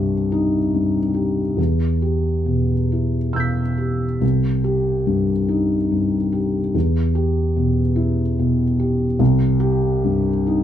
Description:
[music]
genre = neoclassical minimalist piano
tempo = 45-50 BPM (dotted quarters)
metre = 6/8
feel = rubato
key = unclear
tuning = A4 = 440 Hz
[part]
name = felt-muted upright piano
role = solo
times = 0.0-10.6 s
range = C2 to B6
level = -17 LUFS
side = equal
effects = none
[sound]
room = wet studio reverb, RT60 0.6 s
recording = none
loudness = -17 LUFS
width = side -10 dB against mid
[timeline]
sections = 0.0-10.6 A section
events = none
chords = 0.0 Cm; 1.6 Em; 4.2 Cm; 6.7 Em; 9.2 C5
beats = 0.30 | 1.58 2.90 | 4.22 5.50 | 6.75 7.96 | 9.20 10.47

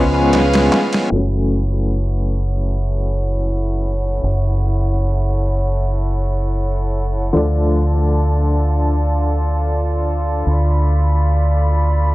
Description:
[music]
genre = trip hop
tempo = free time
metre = none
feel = none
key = unclear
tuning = A4 = 440 Hz
[part]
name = clear upright piano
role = accompaniment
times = 0.0-12.1 s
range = D3 to D4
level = -22 LUFS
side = left 2 dB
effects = tremolo, vintage 12-bit sampler grit, low-pass filter, tape echo
[part]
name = clear chamber violin section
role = sustained chords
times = 0.0-12.1 s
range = C#4 to B5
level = -23 LUFS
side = equal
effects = none
[part]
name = deep dub fingered electric bass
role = bass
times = 0.0-12.1 s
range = F#1 to D2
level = -17 LUFS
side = equal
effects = transformer saturation
[part]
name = darbuka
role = percussion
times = 0.1-1.1 s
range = none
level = -27 LUFS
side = equal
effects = none
[part]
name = boom bap sampler-style drum kit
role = drums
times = 0.3-1.1 s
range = ride cymbal, snare drum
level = -19 LUFS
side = equal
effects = overdrive, studio ambience
[sound]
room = small room ambience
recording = dry, gritty hardware recording, low-pass filter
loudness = -15 LUFS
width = side -18 dB against mid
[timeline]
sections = 0.0-1.1 A section; 1.1-12.1 B section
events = filter sweep on upright piano 1.1-12.1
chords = 0.0 E (rootless); 1.1 F#m7; 7.3 Dm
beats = free time

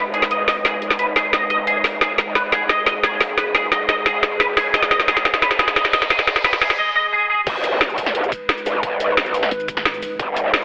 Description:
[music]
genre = dark technical drum and bass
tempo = 176 BPM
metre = 4/4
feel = straight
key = G# phrygian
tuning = A4 = 441 Hz
[part]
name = dark analog pad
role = sustained chords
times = 0.0-10.6 s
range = G#3 to B4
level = -29 LUFS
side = equal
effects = chorus, sidechain pumping
[part]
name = clean electric guitar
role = arpeggios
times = 0.0-7.4 s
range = G#4 to D#5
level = -19 LUFS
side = equal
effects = ensemble chorus, sidechain pumping, low-pass filter, dub echo
[part]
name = growl bass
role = bass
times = 0.0-10.6 s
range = G#1 to D#2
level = -23 LUFS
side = equal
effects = chorus, tube saturation
[part]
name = drum and bass drum kit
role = drums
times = 0.1-10.6 s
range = crash cymbal, hi-hat, shaker, snare drum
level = -18 LUFS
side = equal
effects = overdrive, high-pass filter on hats, high-pass filter on toms, high-pass filter on snare, high-pass filter on cymbals, high-pass filter on perc
[part]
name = riser and swell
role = sound effects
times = 3.5-7.5 s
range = none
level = -31 LUFS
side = equal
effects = none
[part]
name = electronic kick drum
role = drums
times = 7.5-10.3 s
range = none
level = -27 LUFS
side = equal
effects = overdrive
[part]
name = pulsing pluck wobble bass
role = bass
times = 9.5-10.2 s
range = D#1 to G#1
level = -36 LUFS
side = equal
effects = chorus
[sound]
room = moderate lush hall reverb, RT60 1.6 s, digital ambience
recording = heavily compressed radio sound, multiband compression, high-pass filter, telephone sound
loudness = -15 LUFS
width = side -27 dB against mid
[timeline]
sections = 0.0-7.5 A section; 7.5-10.6 B section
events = build-up 0.0-7.5; drum fill 0.0-6.8; swell 6.8-7.5; drop 7.5-10.6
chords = 0.0 G#m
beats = 0.31 | 0.65 0.99 1.33 1.67 | 2.01 2.35 2.69 3.04 | 3.38 3.72 4.06 4.40 | 4.74 5.08 5.42 5.76 | 6.10 6.45 6.79 7.13 | 7.47 7.81 8.15 8.49 | 8.83 9.17 9.51 9.85 | 10.20 10.54

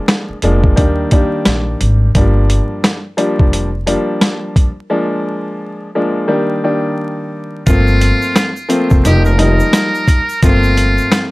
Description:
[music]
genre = hip hop, boom-bap hip-hop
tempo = 87 BPM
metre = 4/4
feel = swing 60% on 16ths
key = G minor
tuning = A4 = 440 Hz
[part]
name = warm grand piano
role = accompaniment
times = 0.0-11.3 s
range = Eb3 to Eb4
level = -16 LUFS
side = left 1 dB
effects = cassette tape, high-pass filter, low-pass filter, plate reverb
[part]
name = boom bap sampler-style drum kit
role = drums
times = 0.1-11.3 s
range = hi-hat, kick drum, snare drum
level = -13 LUFS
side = equal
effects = none
[part]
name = upright bass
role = bass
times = 0.3-11.0 s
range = F1 to Eb2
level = -14 LUFS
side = equal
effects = none
[part]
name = trumpet with metal mute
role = melody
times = 7.7-11.3 s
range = F4 to Bb4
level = -17 LUFS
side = equal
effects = high-pass filter, low-pass filter, digital delay
[part]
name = egg shaker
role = percussion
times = 7.7-11.3 s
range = none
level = -36 LUFS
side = right 4 dB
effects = none
[sound]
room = light reverb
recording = vinyl crackle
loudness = -11 LUFS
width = side -21 dB against mid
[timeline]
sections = 0.0-7.7 A section; 7.7-11.3 B section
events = break 4.9-7.7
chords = 0.0 Bb7/F; 0.8 Ebmaj7; 2.1 Gm7; 4.9 Bb7/F; 6.3 Ebmaj7; 7.7 Gm11; 9.0 F9sus4; 10.4 Gm11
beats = 0.08 0.77 1.46 | 2.15 2.84 3.53 4.22 | 4.91 5.60 6.29 6.98 | 7.67 8.36 9.05 9.74 | 10.43 11.12

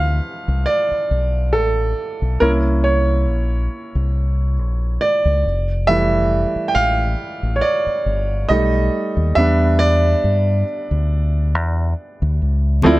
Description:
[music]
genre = R&B, neo-soul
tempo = 69 BPM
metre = 4/4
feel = swing 53% on 16ths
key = unclear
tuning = A4 = 444 Hz
[part]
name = clear grand piano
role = accompaniment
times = 0.0-13.0 s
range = E3 to G5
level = -18 LUFS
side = right 2 dB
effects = none
[part]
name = deep dub fingered electric bass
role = bass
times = 0.0-13.0 s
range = F1 to G2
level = -17 LUFS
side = equal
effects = none
[part]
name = glass harmonica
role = sustained chords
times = 12.8-13.0 s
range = C4 to E5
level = -21 LUFS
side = right 1 dB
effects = none
[part]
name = congas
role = percussion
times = 12.8-13.0 s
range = none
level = -22 LUFS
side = left 2 dB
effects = none
[sound]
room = light reverb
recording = none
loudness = -16 LUFS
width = side -18 dB against mid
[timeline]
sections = 0.0-12.8 A section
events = grand piano solo 0.0-12.8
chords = 0.0 Dm9; 2.4 C7b9; 5.4 Fmaj9; 8.5 B7b13; 9.4 Em7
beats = 0.66 1.53 | 2.40 3.27 4.14 5.00 | 5.88 6.74 7.61 8.48 | 9.35 10.22 11.09 11.96 | 12.83

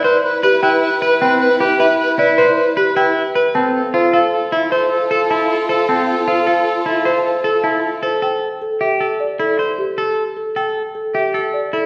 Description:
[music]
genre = classical, minimalist pattern music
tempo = 154 BPM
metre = 6/4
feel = straight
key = A minor from 8.2 s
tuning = A4 = 435 Hz
[part]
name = folk marimba with soft mallets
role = melody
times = 0.0-11.9 s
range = G4 to A5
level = -21 LUFS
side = equal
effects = none
[part]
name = clear oboe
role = second line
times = 0.0-8.0 s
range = A4 to B4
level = -24 LUFS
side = equal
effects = none
[part]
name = warm symphonic string section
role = sustained chords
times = 0.0-8.0 s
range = E4 to B4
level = -23 LUFS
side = equal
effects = none
[part]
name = semi-hollow electric guitar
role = arpeggios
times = 0.0-11.9 s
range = C4 to C5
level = -20 LUFS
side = equal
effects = none
[sound]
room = wet recital hall reverb, RT60 1.5 s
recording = recorded in a church or concert hall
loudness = -16 LUFS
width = mono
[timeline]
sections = 0.0-8.2 A section; 8.2-11.9 B section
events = none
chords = 0.0 Cmaj7; 3.5 F; 8.2 A7(no3)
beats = 0.04 0.43 0.82 | 1.21 1.60 1.99 2.38 2.77 3.16 | 3.55 3.94 4.33 4.72 5.11 5.50 | 5.89 6.28 6.67 7.06 7.45 7.84 | 8.23 8.62 9.01 9.39 9.78 10.17 | 10.56 10.95 11.34 11.73

